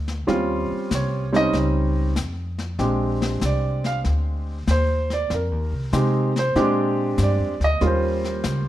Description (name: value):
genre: jazz piano trio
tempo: 96 BPM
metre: 4/4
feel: swing 68% on 8ths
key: Bb mixolydian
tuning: A4 = 440 Hz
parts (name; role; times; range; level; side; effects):
- upright bass; bass; 0.0-8.7 s; Bb1 to C3; -23 LUFS; equal; none
- vintage brush drum kit; drums; 0.1-8.7 s; brushed snare drum, hi-hat, snare drum; -30 LUFS; left 3 dB; none
- warm concert grand piano; melody; 0.3-8.7 s; G3 to F5; -22 LUFS; right 1 dB; none
room: light reverb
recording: dark, warm production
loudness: -20 LUFS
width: side -13 dB against mid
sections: 0.0-8.7 A section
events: grand piano solo 0.0-8.7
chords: 0.3 Eb13; 2.8 Bb13; 5.3 Fm7; 6.6 Bb13; 7.8 Eb13